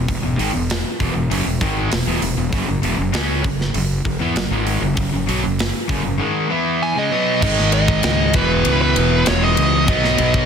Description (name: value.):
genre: hard rock.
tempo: 98 BPM.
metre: 4/4.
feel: straight.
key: unclear.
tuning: A4 = 442 Hz.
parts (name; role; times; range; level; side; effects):
cranked stack guitar; riff; 0.0-10.5 s; E2 to E4; -23 LUFS; right 10 dB; overdrive.
crunchy overdriven guitar; riff; 0.0-10.5 s; E2 to E4; -22 LUFS; left 12 dB; none.
fuzz fingered electric bass; bass; 0.0-10.5 s; E1 to E2; -22 LUFS; equal; overdrive.
tight metal drum kit; drums; 0.1-10.5 s; crash cymbal, hi-hat, kick drum, ride cymbal, snare drum; -22 LUFS; equal; soft clipping on kick.
dark smooth lead guitar; melody; 6.8-10.5 s; B4 to G#5; -20 LUFS; right 4 dB; overdrive, slapback echo.
distorted electric guitar; riff; 7.4-10.5 s; E2 to B3; -24 LUFS; right 1 dB; overdrive.
room: light reverb, small room ambience.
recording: dense, heavily limited modern master.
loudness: -16 LUFS.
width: side -7 dB against mid.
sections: 0.0-7.4 A section; 7.4-10.5 B section.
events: none.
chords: 0.0 E5; 7.4 G#5; 8.3 E5; 9.9 B.